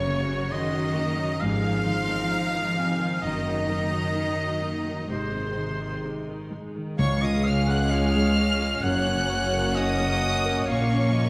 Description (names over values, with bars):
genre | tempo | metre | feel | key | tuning
cinematic, emotional film score for orchestra | 65 BPM | 4/4 | rubato | Db major | A4 = 440 Hz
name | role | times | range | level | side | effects
rich studio violin section | melody | 0.0-11.3 s | Ab5 to Gb6 | -35 LUFS | equal | none
clear oboe | second line | 0.0-11.3 s | C5 to Gb5 | -33 LUFS | equal | none
rich studio violin section | second line | 0.0-11.3 s | F4 to F5 | -38 LUFS | equal | none
dark concert grand piano | accompaniment | 0.0-11.3 s | Db2 to Db5 | -33 LUFS | equal | none
rich studio viola section | accompaniment | 0.0-11.3 s | C3 to Gb4 | -37 LUFS | equal | none
concert harp | arpeggios | 0.0-11.3 s | Gb2 to Gb5 | -36 LUFS | equal | none
rich studio cello section | bass | 0.0-11.3 s | Db2 to F3 | -33 LUFS | equal | none
rich studio double bass section | bass | 0.0-11.3 s | Gb1 to Db2 | -33 LUFS | equal | none
clear clarinet | second line | 7.0-11.3 s | Db5 to Gb5 | -35 LUFS | equal | none
mellow French horn section | sustained chords | 7.0-11.3 s | F3 to Db4 | -36 LUFS | equal | none
timpani | percussion | 7.0-8.3 s | Db3 | -34 LUFS | equal | none
room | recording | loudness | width
moderate concert hall reverb, RT60 1.8 s | none | -25 LUFS | mono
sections
0.0-7.0 A section; 7.0-11.3 B section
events
none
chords
0.0 Gb; 1.4 Ab; 3.2 Ebm/Gb; 5.1 Ab; 7.0 Db; 8.8 Gb; 10.7 Bbm